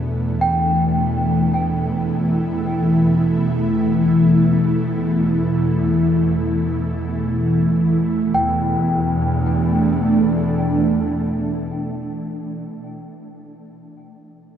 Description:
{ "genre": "ambient", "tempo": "free time", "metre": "none", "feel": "none", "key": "E minor", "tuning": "A4 = 440 Hz", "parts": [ { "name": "ethereal airy pad", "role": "sustained chords", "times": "0.0-12.1 s", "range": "B2 to E4", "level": "-17 LUFS", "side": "equal", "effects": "ensemble chorus, built-in reverb" }, { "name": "warm studio double bass section", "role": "bass", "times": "0.0-11.7 s", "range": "E2", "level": "-27 LUFS", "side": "equal", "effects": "none" }, { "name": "small celesta", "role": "arpeggios", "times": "0.4-14.6 s", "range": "G5", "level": "-25 LUFS", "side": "equal", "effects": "wide subtle chorus, tape echo" } ], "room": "wet huge ambient reverb, RT60 7.1 s", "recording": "dreamy mix soaked in reverb", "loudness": "-16 LUFS", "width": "side -9 dB against mid", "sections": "0.0-8.3 A section; 8.3-12.8 B section", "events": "none", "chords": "0.0 Em7", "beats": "free time" }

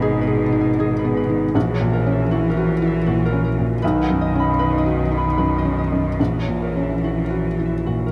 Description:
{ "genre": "neoclassical piano and strings", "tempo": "71-80 BPM", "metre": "3/4", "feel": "rubato", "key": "unclear", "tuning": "A4 = 442 Hz", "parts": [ { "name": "rich cello", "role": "second line", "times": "0.0-8.1 s", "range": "B2 to E3", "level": "-26 LUFS", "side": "equal", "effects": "none" }, { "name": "felt-muted upright piano", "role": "accompaniment", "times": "0.0-8.1 s", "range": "A#1 to G#4", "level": "-23 LUFS", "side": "equal", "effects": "none" }, { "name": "Celtic harp", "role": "arpeggios", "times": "0.0-8.1 s", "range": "F#4 to B5", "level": "-29 LUFS", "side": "equal", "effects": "slapback echo" }, { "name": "rich double bass", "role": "bass", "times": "0.0-8.1 s", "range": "G#1 to B1", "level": "-28 LUFS", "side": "equal", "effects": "none" } ], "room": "wet cathedral reverb, RT60 5.7 s", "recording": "in a vast, echoing space", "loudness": "-20 LUFS", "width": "mono", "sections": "0.0-8.1 A section", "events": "none", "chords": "0.0 G#m; 1.6 F#7/A#; 3.8 Badd9; 6.2 F#7/A#", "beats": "0.02 0.79 | 1.55 2.31 3.06 | 3.82 4.59 5.37 | 6.19 7.03 7.86" }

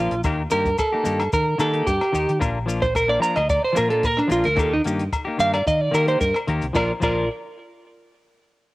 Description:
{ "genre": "highlife guitar band", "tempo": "110 BPM", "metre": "4/4", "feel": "straight", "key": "Bb major", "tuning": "A4 = 435 Hz", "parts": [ { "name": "semi-hollow electric guitar", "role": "accompaniment", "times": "0.0-7.2 s", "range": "Eb3 to G4", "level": "-27 LUFS", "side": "left 3 dB", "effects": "cassette tape" }, { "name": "clean electric guitar", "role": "arpeggios", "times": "0.0-7.3 s", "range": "D4 to Bb5", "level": "-21 LUFS", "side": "right 1 dB", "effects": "cassette tape, tape echo" }, { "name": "fingered electric bass", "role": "bass", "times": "0.0-7.3 s", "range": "Bb1 to Eb3", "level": "-26 LUFS", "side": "equal", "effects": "none" }, { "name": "compact cocktail drum kit", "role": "drums", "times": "0.1-7.2 s", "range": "crash cymbal, hi-hat, kick drum, rim click, snare drum", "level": "-28 LUFS", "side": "equal", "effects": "cassette tape" }, { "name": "maracas", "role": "percussion", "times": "0.1-7.3 s", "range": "none", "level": "-39 LUFS", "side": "left 5 dB", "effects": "none" }, { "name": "agogo bells", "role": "percussion", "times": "0.2-7.2 s", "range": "none", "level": "-32 LUFS", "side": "left 4 dB", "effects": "none" } ], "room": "light reverb, studio reverb", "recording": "home recording on cassette", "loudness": "-18 LUFS", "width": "side -19 dB against mid", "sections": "0.0-6.8 A section; 6.8-8.7 B section", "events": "clean electric guitar solo 0.0-6.8", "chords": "0.2 Eb; 2.4 Bb; 4.6 Eb; 6.8 Bb", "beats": "| 0.24 0.79 1.33 1.87 | 2.42 2.96 3.50 4.04 | 4.59 5.13 5.67 6.21 | 6.76" }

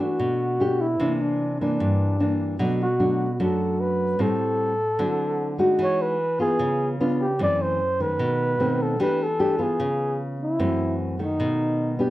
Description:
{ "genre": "bossa nova", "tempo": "150 BPM", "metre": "4/4", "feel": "straight", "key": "E minor", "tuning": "A4 = 440 Hz", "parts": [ { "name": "breathy flugelhorn", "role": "melody", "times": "0.0-12.0 s", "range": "D4 to D5", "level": "-24 LUFS", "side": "equal", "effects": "none" }, { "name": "nylon-string guitar", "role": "accompaniment", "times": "0.0-12.1 s", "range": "F#2 to G4", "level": "-23 LUFS", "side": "equal", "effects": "none" } ], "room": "light reverb", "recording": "dark, warm production", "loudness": "-21 LUFS", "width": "side -16 dB against mid", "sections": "0.0-12.1 A section", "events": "none", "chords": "0.0 Em11; 1.0 C9; 2.6 Bm7; 4.2 Am7; 5.0 D9; 5.8 Emaj9; 6.6 C#7b9; 7.4 F#m7b5; 8.2 B7b9; 9.0 Em7; 9.8 C#7; 10.6 F#m7b5; 11.4 B7", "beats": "0.19 0.59 | 0.99 1.39 1.79 2.19 | 2.59 2.99 3.39 3.79 | 4.19 4.59 4.99 5.39 | 5.79 6.20 6.59 7.00 | 7.39 7.79 8.20 8.60 | 9.00 9.40 9.80 10.20 | 10.60 11.00 11.40 11.80" }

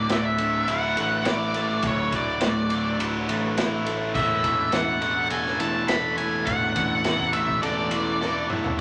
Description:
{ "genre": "psychedelic rock", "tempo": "104 BPM", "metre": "4/4", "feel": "straight", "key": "unclear", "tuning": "A4 = 439 Hz", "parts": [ { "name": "octave-fuzz lead guitar", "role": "melody", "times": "0.0-8.5 s", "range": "C#5 to B5", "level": "-28 LUFS", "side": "equal", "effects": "distortion" }, { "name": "combo organ", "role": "sustained chords", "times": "0.0-8.8 s", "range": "E3 to A4", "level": "-36 LUFS", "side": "equal", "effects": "none" }, { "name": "overdriven semi-hollow guitar", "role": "riff", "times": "0.0-8.8 s", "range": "D2 to A4", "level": "-29 LUFS", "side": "equal", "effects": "none" }, { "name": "fuzz picked electric bass", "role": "bass", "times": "0.0-8.8 s", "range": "D1 to A1", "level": "-36 LUFS", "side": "equal", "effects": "overdrive" }, { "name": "vintage drum kit", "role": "drums", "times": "0.1-8.8 s", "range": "crash cymbal, kick drum, ride cymbal, snare drum, toms", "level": "-32 LUFS", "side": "equal", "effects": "none" } ], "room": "moderate large studio reverb, RT60 1.2 s", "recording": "none", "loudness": "-24 LUFS", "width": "mono", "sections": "0.0-8.8 A section", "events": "drum fill 8.2-8.8", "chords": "0.0 Dadd9; 4.2 Asus2/E", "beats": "0.10 0.68 1.26 | 1.84 2.42 2.99 3.57 | 4.15 4.73 5.31 5.89 | 6.47 7.05 7.63 8.21 | 8.79" }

